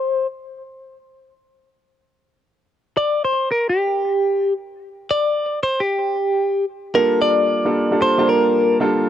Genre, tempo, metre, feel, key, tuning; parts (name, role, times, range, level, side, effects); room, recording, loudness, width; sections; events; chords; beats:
R&B; 113 BPM; 4/4; swing 65% on 16ths; G minor; A4 = 444 Hz
direct-recorded clean electric guitar; melody; 0.0-8.8 s; G4 to D5; -18 LUFS; equal; phaser, low-pass filter, cassette tape
warm baby grand piano; accompaniment; 6.9-9.1 s; G3 to A5; -18 LUFS; right 1 dB; cassette tape
light reverb; home recording on cassette; -16 LUFS; side -10 dB against mid
0.0-6.9 A section; 6.9-9.1 B section
filter sweep on clean electric guitar 0.0-6.9
0.0 N.C.; 6.9 Gm9
0.04 | 0.57 1.10 1.63 2.16 | 2.69 3.22 3.75 4.28 | 4.81 5.34 5.88 6.41 | 6.94 7.47 8.00 8.53 | 9.06